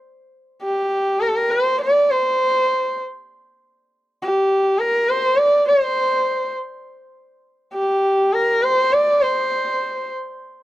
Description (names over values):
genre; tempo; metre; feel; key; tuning
indian classical; free time; none; none; unclear; A4 = 437 Hz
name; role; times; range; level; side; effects
dark sarangi; solo; 0.6-10.1 s; G4 to D5; -16 LUFS; equal; none
room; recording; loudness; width
little or no reverb; dry, close 1970s-style studio recording; -16 LUFS; side -15 dB against mid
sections
0.0-9.2 A section; 9.2-10.6 B section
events
speeding up 0.0-10.6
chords
none